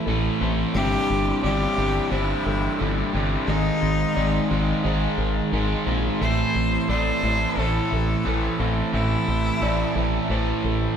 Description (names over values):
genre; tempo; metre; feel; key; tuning
post-rock; 88 BPM; 4/4; straight; unclear; A4 = 441 Hz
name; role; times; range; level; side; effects
bright cello; melody; 0.0-10.3 s; Eb4 to C5; -27 LUFS; left 2 dB; none
hand-pumped harmonium; sustained chords; 0.0-11.0 s; Eb4 to B5; -35 LUFS; left 1 dB; none
felt-muted upright piano; arpeggios; 0.0-11.0 s; A4 to E5; -35 LUFS; right 1 dB; none
twelve-string electric guitar; arpeggios; 0.0-11.0 s; C2 to A4; -35 LUFS; left 2 dB; none
crunchy overdriven guitar; riff; 0.0-11.0 s; C2 to A3; -28 LUFS; left 7 dB; phaser
crunchy overdriven guitar; riff; 0.0-11.0 s; C2 to A3; -26 LUFS; right 5 dB; none
growling fingered electric bass; bass; 0.1-10.9 s; G1 to Bb1; -25 LUFS; equal; overdrive
room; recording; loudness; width
wet stone room reverb, RT60 1.3 s; band playing live in one room; -20 LUFS; side -8 dB against mid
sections
0.0-11.0 A section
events
none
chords
0.0 Am; 0.7 C/G; 3.5 Ab6; 6.2 Am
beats
0.07 | 0.75 1.43 2.11 2.80 | 3.48 4.16 4.84 5.53 | 6.21 6.89 7.58 8.26 | 8.94 9.62 10.30